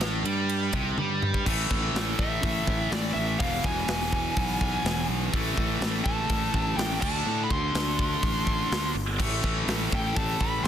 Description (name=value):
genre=hard rock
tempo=124 BPM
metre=4/4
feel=straight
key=A minor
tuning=A4 = 440 Hz
part: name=tight distorted guitar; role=riff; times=0.0-10.7 s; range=E2 to D4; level=-29 LUFS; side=equal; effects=distortion
part: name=fuzz fingered electric bass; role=bass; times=0.0-10.7 s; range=E1 to A2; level=-31 LUFS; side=equal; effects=overdrive
part: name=tight metal drum kit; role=drums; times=0.0-10.7 s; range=crash cymbal, hi-hat, kick drum, ride cymbal, snare drum, toms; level=-30 LUFS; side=equal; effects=none
part: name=high-gain lead guitar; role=melody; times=2.2-10.7 s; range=D5 to C6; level=-31 LUFS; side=equal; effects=distortion, tape echo
room=light reverb, small room ambience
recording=dense, heavily limited modern master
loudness=-24 LUFS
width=side -10 dB against mid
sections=0.0-1.5 A section; 1.5-10.7 B section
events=drum fill 1.0-1.5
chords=0.0 Am; 1.5 A5; 3.4 E; 5.3 A5; 7.0 D5; 9.2 A5